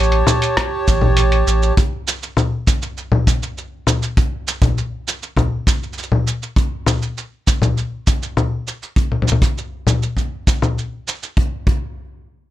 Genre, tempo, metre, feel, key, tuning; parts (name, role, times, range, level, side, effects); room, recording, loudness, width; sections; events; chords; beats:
folktronica; 100 BPM; 4/4; straight; A4 = 440 Hz
hand-pumped harmonium; sustained chords; 0.0-1.7 s; G4 to A5; -18 LUFS; right 2 dB; plate reverb
warm sub bass; bass; 0.0-1.7 s; A1; -16 LUFS; equal
lo-fi sampler-style drum kit; drums; 0.0-11.3 s; cabasa, congas, hi-hat, rim click; -18 LUFS; left 2 dB
kick drum; drums; 0.6-11.8 s; -18 LUFS; equal
little or no reverb; -16 LUFS; side -13 dB against mid
0.0-11.4 A section; 11.4-12.5 B section
0.0 A7; 1.8 N.C.
0.57 1.17 | 1.77 2.37 2.97 3.57 | 4.17 4.77 5.37 5.97 | 6.57 7.17 7.77 8.37 | 8.97 9.57 10.17 10.77 | 11.37